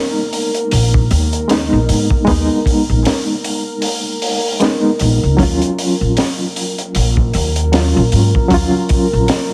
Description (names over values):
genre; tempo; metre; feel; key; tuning
trip hop; 77 BPM; 4/4; swing 58% on 16ths; unclear; A4 = 438 Hz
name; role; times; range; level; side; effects
reed electric piano; accompaniment; 0.0-9.5 s; Gb3 to F4; -20 LUFS; equal; fast tremolo, tape echo
deep dark ambient pad; sustained chords; 0.0-9.5 s; Bb4; -26 LUFS; equal; chorus, built-in reverb
crunchy breakbeat drum kit; drums; 0.3-9.5 s; hi-hat, kick drum, snare drum; -20 LUFS; equal; none
upright bass; bass; 0.7-9.3 s; Bb1 to Ab2; -17 LUFS; equal; none
room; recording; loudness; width
light reverb; vinyl crackle; -15 LUFS; mono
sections
0.0-9.5 A section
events
none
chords
0.0 Abm; 5.4 Ebm7